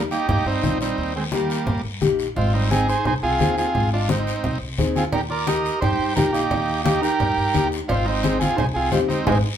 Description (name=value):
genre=latin, cumbia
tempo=174 BPM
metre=4/4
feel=straight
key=Eb major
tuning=A4 = 439 Hz
part: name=combo organ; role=melody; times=0.0-9.4 s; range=G3 to Eb5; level=-23 LUFS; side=right 2 dB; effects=none
part: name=nylon-string guitar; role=accompaniment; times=0.0-9.4 s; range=Bb3 to Bb4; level=-25 LUFS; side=left 5 dB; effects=none
part: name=upright bass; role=bass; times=0.0-9.4 s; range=Ab1 to G2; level=-26 LUFS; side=equal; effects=none
part: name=mellow clarinet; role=second line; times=0.1-9.4 s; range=Eb3 to G4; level=-28 LUFS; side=right 4 dB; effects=none
part: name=guiro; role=percussion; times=0.1-9.3 s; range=none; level=-34 LUFS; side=left 5 dB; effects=none
part: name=congas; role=percussion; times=0.3-9.3 s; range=none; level=-26 LUFS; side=left 2 dB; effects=none
part: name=cowbell and timbales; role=percussion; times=5.1-9.4 s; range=none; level=-32 LUFS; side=right 5 dB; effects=none
room=wet studio reverb, RT60 0.5 s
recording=band playing live in one room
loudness=-19 LUFS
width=side -9 dB against mid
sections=0.0-9.6 A section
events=drum fill 9.3-9.6; band accent 9.3-9.6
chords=0.0 Eb; 2.4 Ab; 5.1 Eb; 7.9 Ab